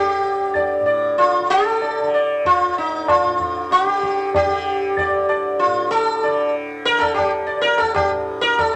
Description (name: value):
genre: indian classical, Hindustani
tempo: 95 BPM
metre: 7/4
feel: straight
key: D raga bhairavi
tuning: A4 = 440 Hz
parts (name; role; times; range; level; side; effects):
- sitar; melody; 0.0-8.8 s; Eb4 to D5; -19 LUFS; equal; none
- tanpura; drone; 0.0-8.8 s; D2 to D3; -32 LUFS; equal; none
- tabla; percussion; 0.6-8.8 s; none; -27 LUFS; equal; none
room: moderate studio reverb, RT60 0.9 s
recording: none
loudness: -19 LUFS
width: mono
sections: 0.0-8.7 A section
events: none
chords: none